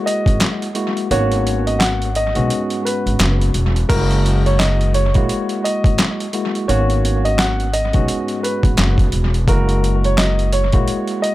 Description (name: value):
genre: hip hop, boom-bap hip-hop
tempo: 86 BPM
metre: 4/4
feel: swing 60% on 16ths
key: unclear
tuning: A4 = 440 Hz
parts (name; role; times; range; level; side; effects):
- warm upright piano; melody; 0.0-11.3 s; A#4 to F#5; -22 LUFS; right 1 dB; high-pass filter, low-pass filter, analog delay
- tine electric piano; accompaniment; 0.0-11.3 s; G#2 to F#4; -22 LUFS; left 1 dB; slow stereo tremolo, cassette tape, high-pass filter, low-pass filter, analog delay
- boom bap sampler-style drum kit; drums; 0.1-11.3 s; crash cymbal, handclaps, hi-hat, kick drum, snare drum; -19 LUFS; equal; overdrive, analog delay
- upright bass; bass; 0.3-10.9 s; E1 to B1; -18 LUFS; equal; none
room: little or no reverb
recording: echo-heavy mix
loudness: -14 LUFS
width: side -16 dB against mid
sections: 0.0-3.9 A section; 3.9-11.3 A section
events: kick muted 1.1-3.9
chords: 0.0 F#9; 1.1 G#m11; 3.9 F#9; 6.7 G#m11; 9.5 F#9